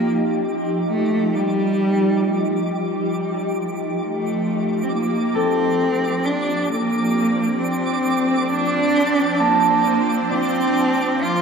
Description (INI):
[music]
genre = ambient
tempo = 67 BPM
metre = 4/4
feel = straight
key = unclear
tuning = A4 = 441 Hz
[part]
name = warm cello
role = melody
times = 0.0-11.4 s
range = G3 to F4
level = -21 LUFS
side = right 1 dB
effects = dub echo
[part]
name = shimmering ambient pad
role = sustained chords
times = 0.0-11.4 s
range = F3 to G4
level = -22 LUFS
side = equal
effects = chorus, built-in reverb
[part]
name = twinkling granular texture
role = texture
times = 0.0-11.4 s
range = D6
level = -30 LUFS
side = right 2 dB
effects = built-in reverb
[part]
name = concert harp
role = arpeggios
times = 5.3-11.4 s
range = D4 to A5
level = -23 LUFS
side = right 2 dB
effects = dub echo
[sound]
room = wet spring reverb, RT60 2.5 s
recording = echo-heavy mix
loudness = -18 LUFS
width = side -5 dB against mid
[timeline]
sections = 0.0-11.4 A section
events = fade-in on synth texture 0.0-11.4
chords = 0.0 F7sus2; 4.9 Bbadd9/F